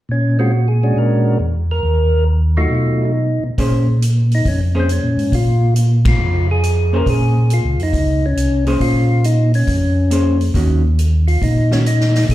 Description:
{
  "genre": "soul jazz organ trio",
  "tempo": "138 BPM",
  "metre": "4/4",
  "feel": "swing 68% on 8ths",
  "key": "Bb minor",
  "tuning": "A4 = 443 Hz",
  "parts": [
    { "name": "percussive tonewheel organ", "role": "melody", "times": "0.1-12.3 s", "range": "Gb3 to Bb4", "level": "-20 LUFS", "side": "equal", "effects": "slow rotary speaker, overdrive, slapback echo" },
    { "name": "tonewheel organ", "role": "bass", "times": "0.1-12.3 s", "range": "C2 to B2", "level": "-15 LUFS", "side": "equal", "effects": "chorus vibrato, slow rotary speaker" },
    { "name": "vintage hollow-body jazz guitar", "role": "accompaniment", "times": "3.6-11.8 s", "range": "Eb3 to C5", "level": "-21 LUFS", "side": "equal", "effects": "slapback echo" },
    { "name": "swinging big-band drum kit", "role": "drums", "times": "3.6-12.3 s", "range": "hi-hat, kick drum, ride cymbal, snare drum", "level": "-22 LUFS", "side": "equal", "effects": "none" }
  ],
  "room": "studio reverb",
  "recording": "live gig heard through the venue's PA, club reverb",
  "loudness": "-13 LUFS",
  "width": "side -14 dB against mid",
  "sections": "0.1-3.6 A section; 3.6-12.3 B section",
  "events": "band accent 6.0",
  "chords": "0.1 Bbm9; 1.0 Bb7alt; 1.8 Ebmadd9; 2.7 B7#11; 3.6 Bbm9; 10.5 Ebm7",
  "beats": "| 0.09 0.53 0.97 1.40 | 1.84 2.28 2.71 3.15 | 3.58 4.02 4.46 4.89 | 5.33 5.76 6.20 6.63 | 7.07 7.50 7.93 8.37 | 8.80 9.24 9.68 10.11 | 10.55 10.98 11.42 11.85 | 12.29"
}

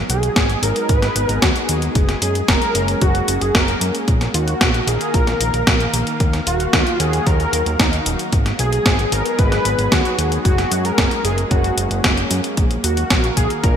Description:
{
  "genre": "italo disco",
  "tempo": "113 BPM",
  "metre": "4/4",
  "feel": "straight",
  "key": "unclear",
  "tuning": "A4 = 439 Hz",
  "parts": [
    { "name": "lush unison pad", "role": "sustained chords", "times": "0.0-13.8 s", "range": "Eb3 to F5", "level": "-25 LUFS", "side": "equal", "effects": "chorus, shimmer reverb" },
    { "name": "fat analog bass", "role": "bass", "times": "0.0-13.8 s", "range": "Eb1 to Gb2", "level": "-21 LUFS", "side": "equal", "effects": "tube saturation" },
    { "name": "wide unison lead", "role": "melody", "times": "0.1-13.8 s", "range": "Eb4 to Cb5", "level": "-22 LUFS", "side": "equal", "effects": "analog chorus, cassette tape, digital delay, shimmer reverb" },
    { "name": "clean 12-bit digital drum machine", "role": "drums", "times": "0.1-13.7 s", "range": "hi-hat, snare drum", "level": "-20 LUFS", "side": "equal", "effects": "gated reverb" },
    { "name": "electronic kick drum", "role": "drums", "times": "0.4-13.7 s", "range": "none", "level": "-18 LUFS", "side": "equal", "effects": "none" },
    { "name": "reverse cymbal", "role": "sound effects", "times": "13.6-13.8 s", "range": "none", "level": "barely audible", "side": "none", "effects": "none" }
  ],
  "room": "moderate lush hall reverb, RT60 2.8 s",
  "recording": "bright 1980s-style digital production",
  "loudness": "-15 LUFS",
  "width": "side -8 dB against mid",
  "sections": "0.0-13.8 A section",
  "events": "none",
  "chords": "0.0 Abm7; 2.0 Gbadd9; 4.1 Bbsus4; 6.2 Ebmadd9; 8.3 Abm7; 10.5 Gbadd9; 12.6 Bbsus4",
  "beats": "0.36 0.89 1.42 | 1.96 2.49 3.02 3.55 | 4.08 4.61 5.14 5.67 | 6.20 6.73 7.26 7.80 | 8.33 8.86 9.39 9.92 | 10.45 10.98 11.51 12.04 | 12.57 13.11 13.64"
}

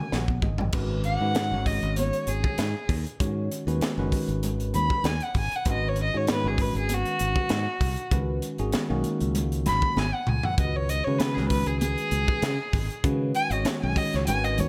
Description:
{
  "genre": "electric jazz fusion",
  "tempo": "98 BPM",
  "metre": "4/4",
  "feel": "swing 54% on 16ths",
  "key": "G# minor",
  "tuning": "A4 = 439 Hz",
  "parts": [
    { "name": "rich violin", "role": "melody", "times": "0.0-14.7 s", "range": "F#4 to B5", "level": "-31 LUFS", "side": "equal", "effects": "none" },
    { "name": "bell-like tine electric piano", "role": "accompaniment", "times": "0.0-14.7 s", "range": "D#3 to G#5", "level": "-34 LUFS", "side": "equal", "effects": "phaser" },
    { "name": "modern bright fingered electric bass", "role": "bass", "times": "0.1-14.7 s", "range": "F#1 to C#3", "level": "-30 LUFS", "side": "equal", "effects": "none" },
    { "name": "crisp fusion drum kit", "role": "drums", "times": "0.1-14.7 s", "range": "crash cymbal, hi-hat, kick drum, snare drum, toms", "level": "-32 LUFS", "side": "equal", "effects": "none" },
    { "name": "congas", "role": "percussion", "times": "0.1-14.7 s", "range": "none", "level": "-36 LUFS", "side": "equal", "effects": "none" }
  ],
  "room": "little or no reverb",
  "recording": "none",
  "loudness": "-26 LUFS",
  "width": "mono",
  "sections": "0.7-14.7 A section",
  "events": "drum fill 0.0-0.7, 10.0-10.6; tine electric piano fill 0.0-0.7; violin solo 0.7-14.7",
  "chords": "0.0 G#7sus2; 0.7 G#m7; 8.1 C#sus2",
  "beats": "0.12 | 0.74 1.36 1.97 2.59 | 3.20 3.82 4.43 5.05 | 5.66 6.28 6.89 7.51 | 8.12 8.74 9.35 9.97 | 10.58 11.20 11.81 12.43 | 13.04 13.65 14.27"
}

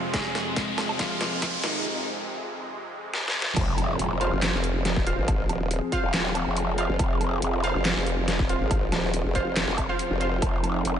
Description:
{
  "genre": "heavy wobble dubstep",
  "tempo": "140 BPM",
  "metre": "4/4",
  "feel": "half-time",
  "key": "F minor",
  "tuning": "A4 = 440 Hz",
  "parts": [
    { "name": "clean electric guitar", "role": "melody", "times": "0.0-1.9 s", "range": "Eb3 to Ab4", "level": "-35 LUFS", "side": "equal", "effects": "lush chorus, diffuse ambient delay" },
    { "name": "supersaw pad", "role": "sustained chords", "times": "0.0-11.0 s", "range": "F2 to Ab4", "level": "-32 LUFS", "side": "right 1 dB", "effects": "phaser, sidechain pumping, low-pass filter" },
    { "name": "riser and impact", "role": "sound effects", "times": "0.0-5.3 s", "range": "none", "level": "-33 LUFS", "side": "equal", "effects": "none" },
    { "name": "warbly tape-like pad", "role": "texture", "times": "0.0-1.9 s", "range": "C4 to C6", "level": "-40 LUFS", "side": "right 1 dB", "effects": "none" },
    { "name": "dubstep drum kit", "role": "drums", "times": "0.1-10.9 s", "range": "crash cymbal, handclaps, hi-hat, snare drum, woodblock", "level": "-29 LUFS", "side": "equal", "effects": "overdrive, high-pass filter on hats, high-pass filter on snare, high-pass filter on perc, high-pass filter on cymbals, high-pass filter on room" },
    { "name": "electronic kick drum", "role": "drums", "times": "0.1-10.5 s", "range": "none", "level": "-28 LUFS", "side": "equal", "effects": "overdrive" },
    { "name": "growl bass", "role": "bass", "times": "3.6-11.0 s", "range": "Eb1 to F1", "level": "-27 LUFS", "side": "left 1 dB", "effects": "chorus, overdrive" },
    { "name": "orchestra-hit-like synth stab", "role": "stabs", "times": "4.2-10.3 s", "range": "F4 to F5", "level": "-32 LUFS", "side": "right 2 dB", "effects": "built-in reverb, cassette tape, diffuse ambient delay" },
    { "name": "formant-sweep wobble bass", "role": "bass", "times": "4.3-10.4 s", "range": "Eb1 to Ab1", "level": "-27 LUFS", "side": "equal", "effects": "chorus, overdrive" }
  ],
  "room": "moderate cathedral reverb, RT60 4.0 s",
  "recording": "dreamy mix soaked in reverb, high-pass filter, nothing above 10.8 kHz",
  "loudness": "-23 LUFS",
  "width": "side -9 dB against mid",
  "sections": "0.0-3.6 A section; 3.6-11.0 B section",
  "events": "build-up 0.0-3.6; drum fill 0.0-1.9, 3.1-3.6; riser 0.0-1.9; break 1.9-3.6; drop 3.6-11.0; impact 3.6-5.3",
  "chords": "0.0 Fm",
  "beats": "| 0.14 0.56 0.99 1.42 | 1.85 2.28 2.71 3.14 | 3.56 3.99 4.42 4.85 | 5.28 5.71 6.14 6.57 | 6.99 7.42 7.85 8.28 | 8.71 9.14 9.56 9.99 | 10.42 10.85"
}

